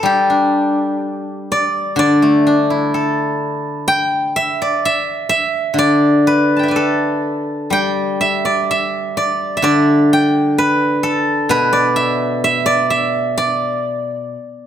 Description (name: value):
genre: chinese traditional, Chinese solo plucked strings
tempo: 63 BPM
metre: 2/4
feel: rubato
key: D zhi mode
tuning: A4 = 440 Hz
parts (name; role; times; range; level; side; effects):
- steel-string zither; solo; 0.0-14.7 s; B2 to A5; -14 LUFS; equal; none
room: moderate recital hall reverb, RT60 1.3 s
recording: none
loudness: -14 LUFS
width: side -9 dB against mid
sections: 0.1-14.7 A section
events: none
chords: none